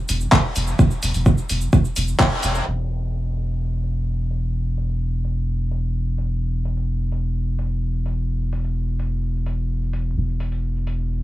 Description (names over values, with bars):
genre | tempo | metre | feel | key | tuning
dub techno | 128 BPM | 4/4 | straight | unclear | A4 = 441 Hz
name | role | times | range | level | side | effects
soft dub sub bass | bass | 0.1-11.2 s | E1 | -22 LUFS | equal | sidechain pumping
deep house drum kit | drums | 0.1-11.0 s | cabasa, handclaps, hi-hat | -23 LUFS | left 1 dB | low-pass filter on perc, low-pass filter on hats, low-pass filter on snare, low-pass filter on room
electronic kick drum | drums | 0.3-2.3 s | none | -16 LUFS | equal | none
room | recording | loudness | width
little or no reverb | vinyl crackle, low-pass filter | -20 LUFS | side -15 dB against mid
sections
0.0-2.7 A section; 2.7-11.2 B section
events
band accent 2.2; filter sweep on drum 2.7-11.2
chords
none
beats
0.32 | 0.79 1.26 1.73 2.20 | 2.67 3.13 3.60 4.07 | 4.54 5.01 5.48 5.95 | 6.42 6.88 7.35 7.82 | 8.29 8.76 9.23 9.70 | 10.17 10.63 11.10